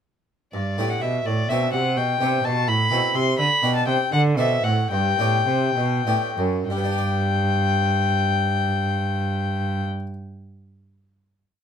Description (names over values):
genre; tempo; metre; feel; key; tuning
classical, baroque-style sonata movement with continuo; 61-85 BPM (dotted quarters); 6/8; straight; G major; A4 = 440 Hz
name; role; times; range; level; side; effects
rich violin; melody; 0.5-9.8 s; D5 to C6; -23 LUFS; left 5 dB; none
harpsichord; accompaniment; 0.5-10.1 s; F#2 to D5; -27 LUFS; right 1 dB; none
rich cello; bass; 0.5-9.8 s; F#2 to D3; -23 LUFS; right 2 dB; none
room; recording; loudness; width
moderate studio reverb, RT60 0.6 s; minimal, uncompressed stereo recording; -19 LUFS; side -8 dB against mid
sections
0.5-6.7 A section; 6.7-10.6 final chord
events
slowing down 2.7-6.7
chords
0.5 G; 1.3 D7/A; 2.0 G/B; 2.7 Am; 3.4 G; 4.1 D5; 4.9 G